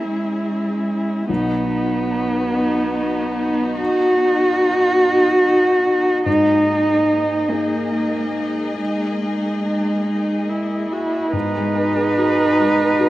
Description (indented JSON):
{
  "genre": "neoclassical piano and strings",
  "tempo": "48 BPM (dotted quarters)",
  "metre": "6/8",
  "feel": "rubato",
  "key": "G# minor",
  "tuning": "A4 = 435 Hz",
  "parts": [
    { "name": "dark cello", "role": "second line", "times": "0.0-13.1 s", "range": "G#3 to F#4", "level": "-18 LUFS", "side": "right 1 dB", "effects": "none" },
    { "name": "felt-muted upright piano", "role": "accompaniment", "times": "0.0-13.1 s", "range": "B1 to B4", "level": "-26 LUFS", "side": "left 3 dB", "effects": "none" },
    { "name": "warm viola", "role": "accompaniment", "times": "0.0-13.1 s", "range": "D#4 to B4", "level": "-24 LUFS", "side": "equal", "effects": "none" },
    { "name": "warm studio string section", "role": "sustained chords", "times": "0.0-13.1 s", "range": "A#3 to D#5", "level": "-28 LUFS", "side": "left 2 dB", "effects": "none" }
  ],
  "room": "light reverb, small room ambience",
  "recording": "rough home demo mix",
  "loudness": "-16 LUFS",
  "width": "side -16 dB against mid",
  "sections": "0.0-11.3 A section; 11.3-13.1 B section",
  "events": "none",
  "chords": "0.0 C#m; 1.3 B; 6.3 G#sus2; 11.3 G#m7",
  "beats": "0.06 | 1.29 2.52 | 3.79 5.02 | 6.26 7.52 | 8.79 10.06 | 11.34 12.59"
}